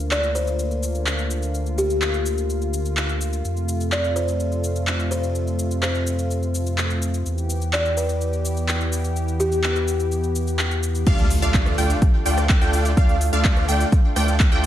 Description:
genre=EDM, festival progressive house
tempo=126 BPM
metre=4/4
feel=straight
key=D minor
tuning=A4 = 436 Hz
part: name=lush unison pad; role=sustained chords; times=0.0-14.7 s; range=C3 to G4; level=-29 LUFS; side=equal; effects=chorus, sidechain pumping
part: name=saturated sub bass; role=bass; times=0.0-14.7 s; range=D2 to F2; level=-24 LUFS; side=equal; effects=sidechain pumping
part: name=big-room dance drum kit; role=drums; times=0.0-14.7 s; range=cabasa, crash cymbal, handclaps, hi-hat, rim click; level=-27 LUFS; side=equal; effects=none
part: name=buzzing kalimba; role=melody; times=0.1-9.9 s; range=G4 to D5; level=-27 LUFS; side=left 2 dB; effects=digital delay
part: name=wide unison pluck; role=arpeggios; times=11.1-14.7 s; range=F5 to G5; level=-27 LUFS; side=equal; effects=phaser, sidechain pumping, digital delay
part: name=big supersaw lead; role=riff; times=11.1-14.7 s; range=A3 to G5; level=-25 LUFS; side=right 1 dB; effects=sidechain pumping, digital delay
part: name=electronic kick drum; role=drums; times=11.1-14.5 s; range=none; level=-17 LUFS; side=equal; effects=overdrive
part: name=impact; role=sound effects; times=11.1-13.0 s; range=none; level=-27 LUFS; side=equal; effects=none
room=light reverb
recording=dark, warm production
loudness=-19 LUFS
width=side -12 dB against mid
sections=0.0-11.1 A section; 11.1-14.7 B section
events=filter sweep on analog synth pad 0.0-11.1; drop 11.1-14.7; impact 11.1-13.0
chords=0.0 Bb/D; 3.4 F; 7.3 Em; 11.1 Dm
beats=0.11 0.59 1.07 | 1.54 2.02 2.50 2.97 | 3.45 3.92 4.40 4.88 | 5.35 5.83 6.30 6.78 | 7.26 7.73 8.21 8.69 | 9.16 9.64 10.11 10.59 | 11.07 11.54 12.02 12.49 | 12.97 13.45 13.92 14.40

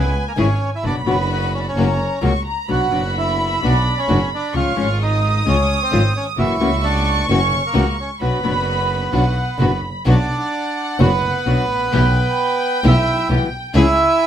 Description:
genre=tango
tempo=130 BPM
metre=4/4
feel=rubato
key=B harmonic minor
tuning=A4 = 441 Hz
part: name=bandoneon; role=melody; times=0.0-14.3 s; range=A#3 to F#5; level=-21 LUFS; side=right 3 dB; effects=none
part: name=warm studio violin section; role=second line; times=0.0-14.3 s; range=F#5 to D#6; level=-24 LUFS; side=equal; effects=none
part: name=clear symphonic string section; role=stabs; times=0.0-13.9 s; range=G#3 to G#4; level=-28 LUFS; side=equal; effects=none
part: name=warm double bass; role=bass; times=0.0-13.9 s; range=F#1 to C#2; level=-19 LUFS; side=right 1 dB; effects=none
part: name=nylon-string guitar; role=accompaniment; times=0.4-13.8 s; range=B2 to F#4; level=-20 LUFS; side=left 4 dB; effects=none
room=light reverb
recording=close, detailed microphones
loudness=-15 LUFS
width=side -10 dB against mid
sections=0.0-10.1 A section; 10.1-14.3 B section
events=none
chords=0.0 C#m; 0.8 Bm/F#; 1.8 F#; 2.7 Bm; 4.5 C#; 6.4 F#7; 8.2 Bm; 11.9 Em/B; 13.7 C#m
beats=0.37 | 0.83 1.29 1.75 2.22 | 2.69 3.16 3.62 4.08 | 4.54 5.00 5.46 5.92 | 6.38 6.83 7.29 7.75 | 8.21 8.67 9.13 9.60 | 10.07 10.54 11.00 11.46 | 11.92 12.38 12.84 13.29 | 13.75 14.20

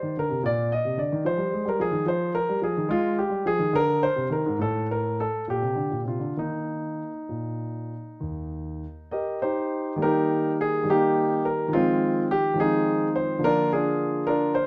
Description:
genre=classical, baroque-style suite movement for grand piano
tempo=69 BPM (dotted quarters)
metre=12/8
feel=uneven beats, rubato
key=Eb major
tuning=A4 = 440 Hz
part: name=warm concert grand piano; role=solo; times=0.0-14.7 s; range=Eb2 to Eb5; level=-25 LUFS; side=equal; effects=none
room=moderate recital hall reverb, RT60 1.6 s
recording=close, detailed microphones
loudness=-25 LUFS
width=mono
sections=0.0-10.0 A section; 10.0-14.7 B section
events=none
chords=0.0 Gm (rootless); 1.3 Fm; 2.9 Fm7; 4.6 N.C.; 5.5 Bb; 6.4 Eb; 11.7 Fm7/Eb; 13.4 Bb7/D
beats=0.42 1.26 2.08 | 2.91 3.74 4.59 5.47 | 6.37 7.28 8.19 9.08 | 9.99 10.86 11.72 12.58 | 13.42 14.24

